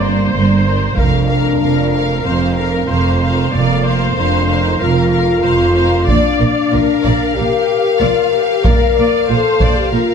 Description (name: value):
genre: cinematic, epic orchestral film score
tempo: 94 BPM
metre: 4/4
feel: straight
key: unclear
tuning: A4 = 440 Hz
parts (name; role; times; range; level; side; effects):
- warm symphonic violin section; melody; 0.0-10.1 s; D5 to F5; -25 LUFS; left 2 dB; none
- warm symphonic violin section; second line; 0.0-10.1 s; F4 to F5; -23 LUFS; left 3 dB; none
- rich symphonic viola section; accompaniment; 0.0-10.1 s; F4 to D5; -20 LUFS; equal; none
- dark French horn section; sustained chords; 0.0-10.1 s; Bb3 to Bb4; -16 LUFS; left 5 dB; none
- warm studio double bass section; bass; 0.0-10.0 s; F1 to Bb1; -18 LUFS; right 4 dB; none
- warm symphonic cello section; bass; 0.0-10.0 s; F2 to Bb2; -19 LUFS; right 3 dB; none
- solo taiko drums; drums; 1.0-2.2, 6.1-10.1 s; none; -17 LUFS; right 1 dB; none
room: moderate scoring stage reverb, RT60 1.7 s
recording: none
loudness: -12 LUFS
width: side -6 dB against mid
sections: 0.0-10.1 A section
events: none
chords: 0.0 Gm; 1.0 Fsus4; 6.1 Bb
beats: 0.33 | 0.97 1.61 2.25 2.89 | 3.53 4.17 4.81 5.45 | 6.08 6.72 7.37 8.00 | 8.64 9.28 9.92